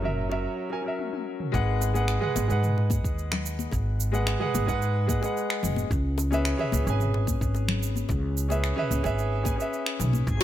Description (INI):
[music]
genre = sunset chillout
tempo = 110 BPM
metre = 4/4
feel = straight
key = G# minor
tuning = A4 = 438 Hz
[part]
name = clear concert grand piano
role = accompaniment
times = 0.0-10.3 s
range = F#3 to G#5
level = -29 LUFS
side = moving between left 8 dB and right 4 dB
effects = auto-pan, digital delay
[part]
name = upright bass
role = bass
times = 0.0-10.4 s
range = F#1 to G#2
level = -26 LUFS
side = equal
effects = none
[part]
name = deep house drum kit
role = drums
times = 0.0-10.4 s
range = cabasa, finger snaps, toms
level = -34 LUFS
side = right 2 dB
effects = low-pass filter on perc, low-pass filter on toms, low-pass filter on snare
[part]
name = bongos and congas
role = percussion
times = 0.3-10.2 s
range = none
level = -35 LUFS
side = left 6 dB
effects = none
[part]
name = electronic kick drum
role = drums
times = 1.5-10.4 s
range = none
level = -30 LUFS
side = equal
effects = none
[part]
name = drifting glass-harmonics texture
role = texture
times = 10.3-10.4 s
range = G#4 to G#5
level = -38 LUFS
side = left 2 dB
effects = chorus, built-in reverb
[sound]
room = light reverb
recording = none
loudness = -24 LUFS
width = side -12 dB against mid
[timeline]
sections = 0.0-1.5 A section; 1.5-10.4 B section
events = break 0.5-1.5; drum fill 1.0-1.5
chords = 0.0 F#7; 1.5 G#m7; 5.9 C#m7